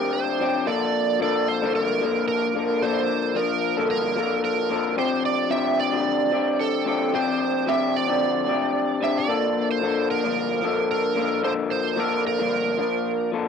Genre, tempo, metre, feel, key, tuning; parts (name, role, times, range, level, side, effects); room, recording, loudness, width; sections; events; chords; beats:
indie pop; 112 BPM; 4/4; swing 55% on 16ths; A4 = 442 Hz
overdriven slide guitar; melody; 0.0-13.3 s; A4 to E5; -24 LUFS; right 12 dB; analog chorus, cassette tape
electric guitar through a small old amp; accompaniment; 0.0-13.5 s; G2 to A4; -23 LUFS; left 7 dB; lush chorus, warbly pitch drift, cassette tape
moderate booth ambience, RT60 0.2 s; home recording on cassette; -21 LUFS; side -6 dB against mid
0.0-13.5 A section
0.0 Dm7; 0.7 Gm9; 5.0 Dm7; 9.3 Gm9
0.13 | 0.67 1.21 1.74 2.28 | 2.82 3.36 3.90 4.44 | 4.97 5.51 6.05 6.59 | 7.13 7.67 8.20 8.74 | 9.28 9.82 10.36 10.89 | 11.43 11.97 12.51 13.05